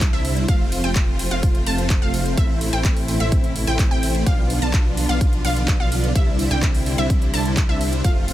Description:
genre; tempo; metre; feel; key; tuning
EDM, festival progressive house; 127 BPM; 4/4; straight; unclear; A4 = 442 Hz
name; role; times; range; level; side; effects
muted studio string section; sustained chords; 0.0-8.3 s; C3 to F4; -30 LUFS; right 1 dB; sidechain pumping
wide unison pluck; arpeggios; 0.0-8.3 s; E5 to A5; -28 LUFS; equal; sidechain pumping, digital delay
supersaw chords; riff; 0.0-8.3 s; G3 to A5; -25 LUFS; equal; ensemble chorus, sidechain pumping, digital delay
wide detuned saw bass; bass; 0.0-8.3 s; F1 to C2; -24 LUFS; equal; chorus, tube saturation, sidechain pumping
big-room dance drum kit; drums; 0.0-8.3 s; handclaps, hi-hat; -28 LUFS; right 1 dB; overdrive
electronic kick drum; drums; 0.0-8.1 s; none; -19 LUFS; equal; overdrive
room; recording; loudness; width
little or no reverb; none; -17 LUFS; side -14 dB against mid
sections
0.0-8.3 A section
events
none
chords
0.5 F; 2.4 Am; 4.3 Bdim; 6.2 Cadd9

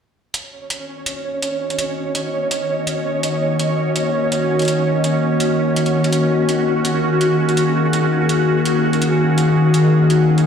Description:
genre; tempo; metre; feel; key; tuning
half-time drum and bass; 166 BPM; 4/4; swing 53% on 16ths, half-time; Eb minor; A4 = 440 Hz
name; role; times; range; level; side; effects
bowed-like drone; sustained chords; 1.7-10.5 s; Eb3 to Eb5; -16 LUFS; left 1 dB; built-in reverb
electronic hi-hat; drums; 0.3-10.4 s; none; -25 LUFS; right 2 dB; none
pulsing gated texture; texture; 0.3-10.5 s; Db4 to Db5; -21 LUFS; right 2 dB; chorus, built-in reverb
room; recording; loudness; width
wet echo chamber reverb, RT60 1.5 s; played on a big sound system in a bare room, large studio reverb; -15 LUFS; side -7 dB against mid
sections
0.3-10.5 A section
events
none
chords
0.3 Ebm

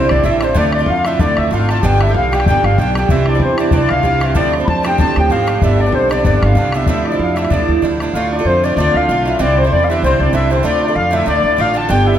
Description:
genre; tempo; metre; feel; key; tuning
celtic folk, Celtic reel; 190 BPM; 4/4; swing 55% on 8ths; D dorian; A4 = 445 Hz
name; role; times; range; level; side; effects
mellow wooden flute; melody; 0.0-12.2 s; C5 to B5; -18 LUFS; left 2 dB; none
accordion; second line; 0.0-12.2 s; C5 to A5; -23 LUFS; left 3 dB; light tremolo tuning
hammered dulcimer; second line; 0.0-12.2 s; C4 to A4; -22 LUFS; right 4 dB; none
Irish bouzouki; accompaniment; 0.0-12.2 s; G2 to G4; -19 LUFS; right 4 dB; none
upright bass; bass; 0.0-12.2 s; G1 to F2; -17 LUFS; equal; none
bodhran; percussion; 0.1-8.1 s; none; -20 LUFS; left 2 dB; none
room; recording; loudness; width
wet recital hall reverb, RT60 1.4 s; none; -12 LUFS; side -10 dB against mid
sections
0.0-8.1 A section; 8.1-12.2 A section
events
none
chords
0.0 Cadd9; 0.6 Dm; 1.8 G; 3.1 C; 4.4 Dm7; 5.6 G; 6.9 Dmadd9; 8.1 Dm; 9.4 Cadd9; 10.6 Dm

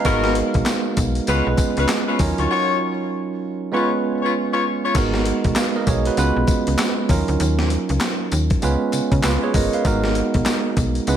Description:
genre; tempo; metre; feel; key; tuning
R&B, new jack swing; 98 BPM; 4/4; swing 62% on 16ths; G# dorian; A4 = 439 Hz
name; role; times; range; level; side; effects
bell-like tine electric piano; accompaniment; 0.0-11.2 s; F#3 to E#5; -21 LUFS; right 4 dB; none
warm horn section; stabs; 0.0-4.9 s; B3 to C#5; -23 LUFS; left 5 dB; ping-pong delay
boom bap sampler-style drum kit; drums; 0.0-11.2 s; crash cymbal, handclaps, hi-hat, kick drum, snare drum, tambourine; -22 LUFS; left 1 dB; none
slap-like FM bass; bass; 0.1-11.2 s; G1 to C#3; -22 LUFS; left 1 dB; none
group handclap; percussion; 0.7-10.6 s; none; barely audible; none; none
room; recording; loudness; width
moderate plate reverb, RT60 1.9 s, digital ambience; dreamy mix soaked in reverb; -17 LUFS; side -9 dB against mid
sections
0.0-4.9 A section; 4.9-11.2 A section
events
break 2.5-4.9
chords
0.1 G#m9; 1.3 C#7; 2.2 D#m9; 3.7 C#7; 4.9 G#m9; 6.2 C#7; 7.1 D#m9; 8.6 C#7; 9.8 G#m9

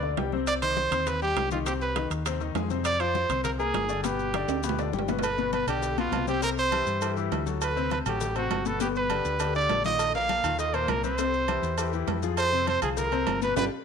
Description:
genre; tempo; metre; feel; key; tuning
latin, salsa; 202 BPM; 4/4; straight; unclear; A4 = 440 Hz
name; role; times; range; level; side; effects
clear trumpet; melody; 0.0-13.6 s; F4 to F5; -28 LUFS; right 3 dB; none
clear baby grand piano; accompaniment; 0.0-13.7 s; Bb2 to C6; -31 LUFS; left 10 dB; none
fingered electric bass; bass; 0.0-13.7 s; G1 to G2; -32 LUFS; right 1 dB; none
bongos and cowbell; percussion; 0.0-13.6 s; none; -40 LUFS; left 12 dB; none
congas; percussion; 0.0-13.6 s; none; -39 LUFS; left 11 dB; none
timbales and agogo bells; percussion; 0.2-13.6 s; none; -34 LUFS; right 14 dB; none
maracas; percussion; 0.5-13.6 s; none; -43 LUFS; left 15 dB; none
room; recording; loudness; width
moderate echo chamber reverb, RT60 1.6 s, studio ambience; 1960s-style stereo with parts hard left and right; -24 LUFS; side -6 dB against mid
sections
0.0-5.2 A section; 5.2-13.8 B section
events
drum fill 4.5-5.2, 13.6; band accent 13.6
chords
0.5 Cm; 1.7 Ab/C; 2.9 Fsus4; 4.0 G; 6.4 C; 7.6 D7; 8.8 G; 10.0 Bbsus4; 11.2 C; 12.4 Fm

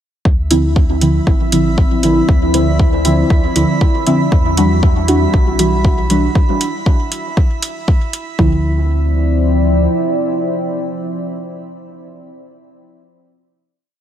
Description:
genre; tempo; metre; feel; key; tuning
dub techno; 118 BPM; 4/4; straight; D minor; A4 = 439 Hz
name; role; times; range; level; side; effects
deep dark ambient pad; sustained chords; 1.5-12.1 s; F3 to D5; -20 LUFS; equal; chorus, built-in reverb, sidechain pumping
warm sub bass; bass; 0.3-9.9 s; A1 to E2; -17 LUFS; equal; sidechain pumping
electronic kick drum; drums; 0.3-8.5 s; none; -13 LUFS; equal; overdrive
drifting glass-harmonics texture; texture; 0.3-8.4 s; E4 to E5; -25 LUFS; right 3 dB; chorus, built-in reverb, sidechain pumping
deep mellow chord stab; stabs; 0.5-12.1 s; D3 to F#4; -16 LUFS; equal; chorus, phaser, dub echo
electronic hi-hat; drums; 0.5-8.2 s; none; -22 LUFS; right 2 dB; overdrive
room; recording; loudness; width
light reverb; none; -12 LUFS; side -10 dB against mid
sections
0.3-8.4 groove; 8.4-12.5 final chord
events
filter sweep on synth stab 0.3-6.4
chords
0.3 Dm9; 4.3 Em9; 8.4 Dm9

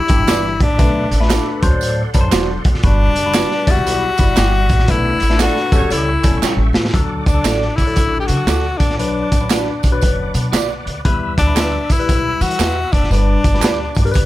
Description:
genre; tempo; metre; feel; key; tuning
uptempo 1960s-style soul; 117 BPM; 4/4; swing 63% on 8ths; D major; A4 = 440 Hz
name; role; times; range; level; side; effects
breathy tenor saxophone; melody; 0.0-14.1 s; D4 to G4; -19 LUFS; left 3 dB; none
bright tonewheel organ; sustained chords; 0.0-14.3 s; G3 to E6; -30 LUFS; equal; slow rotary speaker, chorus vibrato
barky tine electric piano; accompaniment; 0.1-14.3 s; E3 to D5; -23 LUFS; left 4 dB; phaser
upright bass; bass; 0.1-14.3 s; E1 to E3; -19 LUFS; equal; none
raw garage drum kit; drums; 0.1-14.3 s; hi-hat, kick drum, snare drum; -17 LUFS; equal; none
tambourine and handclaps; percussion; 0.1-14.3 s; none; -28 LUFS; right 12 dB; none
electric guitar through a small old amp; stabs; 0.3-13.8 s; E4 to E5; -25 LUFS; right 8 dB; lush chorus
mellow horn section; second line; 5.4-6.0 s; F#3 to C#5; -28 LUFS; right 4 dB; none
room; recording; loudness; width
small room reverb; none; -13 LUFS; side -15 dB against mid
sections
0.0-6.9 A section; 6.9-14.3 B section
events
band accent 4.9-6.9; drum fill 6.4-6.9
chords
0.0 Em7; 0.8 Bm7; 1.6 D7; 2.8 Gmaj7; 3.6 Em7; 4.9 Bm7; 5.7 A7; 6.9 D; 9.0 Bm; 11.0 Em; 13.1 G

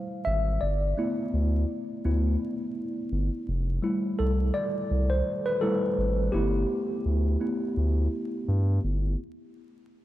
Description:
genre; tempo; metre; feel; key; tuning
lo-fi hip hop; 84 BPM; 4/4; swing 56% on 16ths; G mixolydian; A4 = 440 Hz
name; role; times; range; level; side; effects
mellow tine electric piano; accompaniment; 0.0-9.2 s; G3 to F5; -28 LUFS; equal; medium stereo tremolo, cassette tape
saturated sub bass; bass; 0.3-9.2 s; F1 to G2; -25 LUFS; equal; none
room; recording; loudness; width
moderate church reverb, RT60 3.2 s; dreamy mix soaked in reverb, vinyl crackle; -25 LUFS; side -14 dB against mid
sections
0.0-9.2 A section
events
tine electric piano solo 0.0-9.2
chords
0.0 Fmaj7; 0.6 G6; 3.5 Fmaj7 (rootless); 6.3 G6

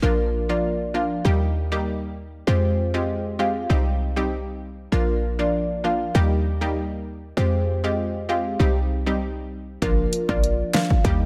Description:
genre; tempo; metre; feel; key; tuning
dancehall; 98 BPM; 4/4; straight; unclear; A4 = 440 Hz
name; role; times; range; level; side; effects
marimba with soft mallets; melody; 0.0-10.9 s; Bb4 to F5; -30 LUFS; equal; delay
analog pluck; accompaniment; 0.0-11.2 s; F3 to G4; -28 LUFS; equal; chorus
short 808-style bass; bass; 0.0-11.3 s; Bb1 to F2; -26 LUFS; equal; none
deep house drum kit; drums; 9.8-11.2 s; hi-hat, kick drum, rim click, snare drum; -24 LUFS; equal; overdrive
room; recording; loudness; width
light reverb, digital ambience; dense, heavily limited modern master; -23 LUFS; mono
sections
0.0-9.8 A section; 9.8-11.3 B section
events
none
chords
0.0 Bb; 1.3 Eb; 2.5 Fmadd9; 3.7 Cm; 4.9 Bb; 6.1 Eb; 7.4 Fmadd9; 8.6 Cm; 9.8 Bb

